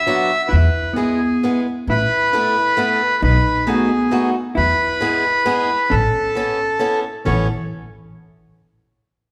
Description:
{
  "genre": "musette waltz",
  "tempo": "134 BPM",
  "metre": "3/4",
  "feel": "straight",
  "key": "A major",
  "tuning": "A4 = 439 Hz",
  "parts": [
    { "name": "accordion", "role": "melody", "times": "0.0-7.5 s", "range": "G#4 to E5", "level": "-20 LUFS", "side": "equal", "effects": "none" },
    { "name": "hollow-body jazz guitar", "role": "second line", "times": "0.0-7.5 s", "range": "E3 to B4", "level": "-26 LUFS", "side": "equal", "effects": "none" },
    { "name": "picked swing-style acoustic guitar", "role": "accompaniment", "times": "0.1-7.5 s", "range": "F#3 to A4", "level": "-26 LUFS", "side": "equal", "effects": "none" },
    { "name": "upright bass", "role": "bass", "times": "0.5-7.5 s", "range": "A1 to E2", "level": "-21 LUFS", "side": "equal", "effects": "none" }
  ],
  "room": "wet recital hall reverb, RT60 1.6 s",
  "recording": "recorded in a church or concert hall",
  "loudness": "-18 LUFS",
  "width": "mono",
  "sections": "0.0-7.3 A section; 7.3-8.6 B section",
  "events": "none",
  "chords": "0.0 Bm; 0.5 E; 1.9 Asus2; 3.2 B7; 4.6 E; 5.9 Aadd9",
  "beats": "0.07 | 0.52 0.97 1.42 | 1.87 2.33 2.77 | 3.22 3.67 4.12 | 4.56 5.01 5.46 | 5.91 6.36 6.81 | 7.26"
}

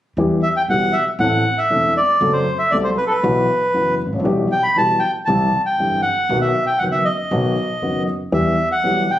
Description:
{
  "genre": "tango",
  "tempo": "118 BPM",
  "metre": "4/4",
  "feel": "rubato",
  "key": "E minor",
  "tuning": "A4 = 440 Hz",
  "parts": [
    { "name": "dark concert grand piano", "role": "accompaniment", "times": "0.2-9.1 s", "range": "E1 to A4", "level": "-20 LUFS", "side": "left 1 dB", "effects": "none" },
    { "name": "upright bass", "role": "bass", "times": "0.2-9.1 s", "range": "E1 to E2", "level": "-27 LUFS", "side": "right 2 dB", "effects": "none" },
    { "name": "bandoneon", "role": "melody", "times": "0.4-9.2 s", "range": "A4 to B5", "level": "-17 LUFS", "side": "equal", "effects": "none" }
  ],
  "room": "moderate club reverb, RT60 0.6 s",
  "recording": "recorded on a phone in the room, club reverb, compression",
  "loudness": "-15 LUFS",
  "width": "side -12 dB against mid",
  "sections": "0.2-9.2 A section",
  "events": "none",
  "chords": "0.2 Em; 1.2 Am; 2.2 F#dim; 3.2 Bsus4; 4.3 Em/B; 5.3 C; 6.3 B; 8.3 Em",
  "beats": "| 0.19 0.70 1.21 1.72 | 2.23 2.73 3.24 3.75 | 4.26 4.77 5.28 5.78 | 6.29 6.80 7.31 7.82 | 8.33 8.84"
}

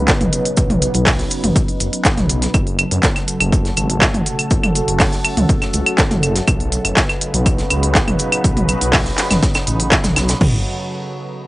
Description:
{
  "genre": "melodic techno",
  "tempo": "122 BPM",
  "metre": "4/4",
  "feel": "straight",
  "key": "F# dorian",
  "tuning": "A4 = 440 Hz",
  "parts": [
    { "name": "evolving wavetable pad", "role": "sustained chords", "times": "0.0-10.6 s", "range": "C#3 to B4", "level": "-23 LUFS", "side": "equal", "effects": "phaser, built-in reverb, sidechain pumping, cassette tape" },
    { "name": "swelling detuned saw bass", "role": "bass", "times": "0.0-10.6 s", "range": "F#1 to F#2", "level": "-20 LUFS", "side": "equal", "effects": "sidechain pumping" },
    { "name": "techno drum kit", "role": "drums", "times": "0.1-10.5 s", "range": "crash cymbal, kick drum, toms", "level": "-18 LUFS", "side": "equal", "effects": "cassette tape" },
    { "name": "techno drum kit", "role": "drums", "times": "0.1-10.4 s", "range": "claves, handclaps, hi-hat, toms", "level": "-17 LUFS", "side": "equal", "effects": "cassette tape" },
    { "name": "tight funk drum kit", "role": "drums", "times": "0.1-10.4 s", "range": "hi-hat, shaker, snare drum", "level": "-26 LUFS", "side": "equal", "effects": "sidechain pumping on hats, high-pass filter on hats, cassette tape, high-pass filter on snare, sidechain pumping on perc, high-pass filter on perc, high-pass filter on room" }
  ],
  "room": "light reverb",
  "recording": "home recording on cassette, nothing above 10.5 kHz",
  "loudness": "-14 LUFS",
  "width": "side -19 dB against mid",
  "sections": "0.0-10.4 A section; 10.4-11.5 B section",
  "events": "none",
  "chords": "0.0 Badd9; 2.5 F#m; 6.5 Badd9; 10.4 F#m",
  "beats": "0.08 | 0.57 1.07 1.56 2.05 | 2.54 3.03 3.52 4.02 | 4.51 5.00 5.49 5.98 | 6.47 6.97 7.46 7.95 | 8.44 8.93 9.43 9.92 | 10.41"
}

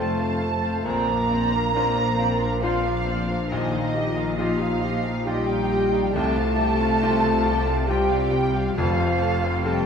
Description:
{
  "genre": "cinematic, emotional film score for orchestra",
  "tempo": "68 BPM",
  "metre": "3/4",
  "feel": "rubato",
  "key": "F mixolydian",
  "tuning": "A4 = 441 Hz",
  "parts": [
    { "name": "mellow French horn", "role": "melody", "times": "0.0-9.9 s", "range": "Eb4 to Bb4", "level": "-29 LUFS", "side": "equal", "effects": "none" },
    { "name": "muted studio violin section", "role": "melody", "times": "0.0-9.8 s", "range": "D5 to A5", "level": "-37 LUFS", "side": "left 1 dB", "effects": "none" },
    { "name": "flute section", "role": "second line", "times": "0.0-9.9 s", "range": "Eb5 to Bb5", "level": "-29 LUFS", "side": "right 3 dB", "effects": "none" },
    { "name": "muted studio violin section", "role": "second line", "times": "0.0-9.9 s", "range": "Eb5 to Bb5", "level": "-31 LUFS", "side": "right 3 dB", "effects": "none" },
    { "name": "bright grand piano", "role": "accompaniment", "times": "0.0-9.9 s", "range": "F1 to C5", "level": "-29 LUFS", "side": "left 2 dB", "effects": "none" },
    { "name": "muted studio viola section", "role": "accompaniment", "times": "0.0-9.9 s", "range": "G3 to C5", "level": "-31 LUFS", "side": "left 2 dB", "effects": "none" },
    { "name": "mellow French horn section", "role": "sustained chords", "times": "0.0-9.9 s", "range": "Eb3 to Bb3", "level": "-28 LUFS", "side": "equal", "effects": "none" },
    { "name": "concert harp", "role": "arpeggios", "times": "0.0-9.9 s", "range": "F2 to C6", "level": "-33 LUFS", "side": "left 3 dB", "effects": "none" },
    { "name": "muted studio cello section", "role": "bass", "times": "0.0-9.9 s", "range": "F2 to C3", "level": "-31 LUFS", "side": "equal", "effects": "none" },
    { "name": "muted studio double bass section", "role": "bass", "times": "0.0-9.9 s", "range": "F1 to C2", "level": "-30 LUFS", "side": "equal", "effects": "none" }
  ],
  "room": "wet stone room reverb, RT60 1.3 s",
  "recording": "minimal, uncompressed stereo recording",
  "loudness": "-20 LUFS",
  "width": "side -6 dB against mid",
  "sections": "0.0-9.9 A section",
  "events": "none",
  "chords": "0.0 F; 0.8 Bbadd9; 3.5 Ebadd9/Bb; 6.1 Csus4; 8.8 F",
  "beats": "| 0.85 1.74 2.63 | 3.51 4.38 5.26 | 6.15 7.01 7.88 | 8.76 9.65"
}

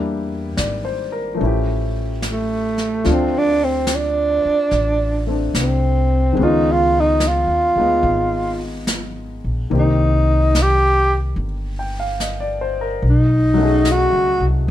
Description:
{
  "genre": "jazz ballad",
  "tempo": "72 BPM",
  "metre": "4/4",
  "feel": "swing 69% on 8ths",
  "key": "unclear",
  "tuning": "A4 = 440 Hz",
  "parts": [
    { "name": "warm concert grand piano", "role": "accompaniment", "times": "0.0-14.7 s", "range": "Eb3 to G5", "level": "-23 LUFS", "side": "left 2 dB", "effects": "none" },
    { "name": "upright bass", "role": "bass", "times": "0.0-14.7 s", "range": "G1 to E2", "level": "-20 LUFS", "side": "equal", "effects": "none" },
    { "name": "jazz brush drum kit", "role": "drums", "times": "0.6-14.7 s", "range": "brushed snare drum, hi-hat, snare drum", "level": "-27 LUFS", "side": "equal", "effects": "none" },
    { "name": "growling tenor saxophone", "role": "melody", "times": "2.3-14.5 s", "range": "A3 to G4", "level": "-17 LUFS", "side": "right 1 dB", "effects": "none" }
  ],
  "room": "light reverb",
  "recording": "minimal, uncompressed stereo recording",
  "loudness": "-16 LUFS",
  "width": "side -12 dB against mid",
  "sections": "0.0-14.7 A section",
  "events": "tenor saxophone solo 0.0-14.7",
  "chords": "0.0 Em7b5; 1.4 A7b13; 3.1 Dm7; 6.4 Db9; 9.7 Cm7; 13.0 B13",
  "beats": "0.57 1.40 2.23 | 3.05 3.88 4.71 5.54 | 6.37 7.20 8.03 8.87 | 9.70 10.54 11.37 12.20 | 13.02 13.85 14.68"
}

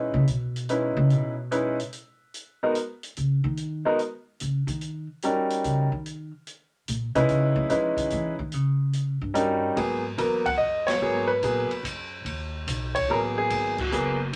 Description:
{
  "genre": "jazz piano trio",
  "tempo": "145 BPM",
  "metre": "3/4",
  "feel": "swing 68% on 8ths",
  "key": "G# minor",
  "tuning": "A4 = 438 Hz",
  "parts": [
    { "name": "clear concert grand piano", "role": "melody", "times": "0.0-14.3 s", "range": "F#3 to F#5", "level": "-26 LUFS", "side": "equal", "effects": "none" },
    { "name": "upright bass", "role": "bass", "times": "0.0-14.4 s", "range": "F#1 to F#3", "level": "-30 LUFS", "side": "equal", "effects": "none" },
    { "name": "open jazz drum kit", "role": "drums", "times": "0.3-14.4 s", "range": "crash cymbal, hi-hat, kick drum, ride cymbal, snare drum", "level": "-38 LUFS", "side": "equal", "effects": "none" }
  ],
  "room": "wet small room ambience, RT60 0.5 s",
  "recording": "none",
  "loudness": "-26 LUFS",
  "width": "mono",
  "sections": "0.0-9.8 A section; 9.8-14.4 B section",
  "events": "upright bass solo 0.0-9.8; band accent 10.8, 13.7",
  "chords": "0.0 C#m9; 2.3 N.C.; 4.8 D#7#9; 7.3 C#m9; 8.5 N.C.; 9.4 D#7#9; 9.8 G#m9",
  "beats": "0.27 0.68 | 1.10 1.51 1.92 | 2.34 2.75 3.16 | 3.58 3.99 4.40 | 4.81 5.23 5.64 | 6.05 6.46 6.88 | 7.29 7.70 8.11 | 8.53 8.94 9.35 | 9.77 10.18 10.60 | 11.01 11.43 11.84 | 12.26 12.67 13.08 | 13.50 13.91 14.33"
}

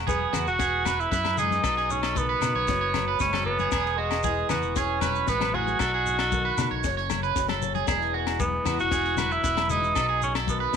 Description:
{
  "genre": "highlife guitar band",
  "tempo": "115 BPM",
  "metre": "4/4",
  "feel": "straight",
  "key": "E major",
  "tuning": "A4 = 439 Hz",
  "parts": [
    { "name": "picked old ladder-braced acoustic guitar", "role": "accompaniment", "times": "0.0-10.8 s", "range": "E2 to G#4", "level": "-35 LUFS", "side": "left 12 dB", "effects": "none" },
    { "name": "electric guitar at the edge of break-up", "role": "arpeggios", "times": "0.0-10.8 s", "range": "E4 to C#5", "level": "-28 LUFS", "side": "right 14 dB", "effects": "wide subtle chorus, slapback echo" },
    { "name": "fingered electric bass", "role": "bass", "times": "0.0-10.8 s", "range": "E1 to B2", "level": "-32 LUFS", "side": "equal", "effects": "none" },
    { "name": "clear tenor saxophone", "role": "melody", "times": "0.1-10.8 s", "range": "G#3 to F#4", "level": "-26 LUFS", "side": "right 1 dB", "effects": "none" },
    { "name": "tight funk drum kit", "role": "drums", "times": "0.1-10.8 s", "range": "kick drum, snare drum", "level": "-32 LUFS", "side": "left 4 dB", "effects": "none" },
    { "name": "congas", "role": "percussion", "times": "0.1-10.8 s", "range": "none", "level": "-36 LUFS", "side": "left 9 dB", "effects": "none" },
    { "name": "shekere", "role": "percussion", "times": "0.1-10.8 s", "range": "none", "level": "-39 LUFS", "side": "left 7 dB", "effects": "none" },
    { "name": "agogo bells", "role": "percussion", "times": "0.3-10.5 s", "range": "none", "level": "-36 LUFS", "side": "left 15 dB", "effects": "none" }
  ],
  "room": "moderate spring reverb, RT60 1.6 s, studio reverb",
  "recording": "1960s-style stereo with parts hard left and right",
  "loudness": "-23 LUFS",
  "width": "side -7 dB against mid",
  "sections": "0.0-10.8 A section",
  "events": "none",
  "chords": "0.0 E; 1.6 B7; 2.7 F#m; 3.7 E; 5.8 B7; 6.8 F#m; 7.9 E; 10.0 B7",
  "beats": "0.08 0.60 1.12 | 1.64 2.16 2.68 3.21 | 3.73 4.25 4.77 5.29 | 5.81 6.33 6.85 7.37 | 7.88 8.40 8.92 9.44 | 9.96 10.48"
}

